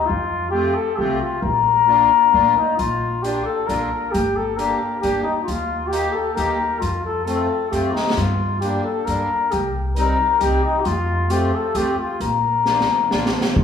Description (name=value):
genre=alpine folk, alpine dance band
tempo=134 BPM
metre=3/4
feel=straight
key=Bb major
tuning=A4 = 441 Hz
part: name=warm flugelhorn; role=melody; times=0.0-13.6 s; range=Eb4 to Bb4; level=-19 LUFS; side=left 4 dB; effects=none
part: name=upright bass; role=bass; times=0.1-13.6 s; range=G1 to G2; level=-25 LUFS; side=equal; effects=none
part: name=accordion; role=accompaniment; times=0.5-13.3 s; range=G3 to G4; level=-26 LUFS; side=left 2 dB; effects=light tremolo tuning
part: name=street-band drum kit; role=drums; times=2.8-13.6 s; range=hi-hat, kick drum, ride cymbal, snare drum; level=-25 LUFS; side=right 1 dB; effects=none
room=wet recital hall reverb, RT60 1.4 s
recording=recorded in a church or concert hall, small room ambience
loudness=-17 LUFS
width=side -7 dB against mid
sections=0.0-2.8 A section; 2.8-13.6 A section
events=drum fill 8.0, 12.7-13.6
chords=0.1 F; 1.4 Bb; 4.1 Gm; 5.5 Eb; 6.8 F; 8.2 Gm7; 9.5 Cm; 10.9 F; 12.2 Bb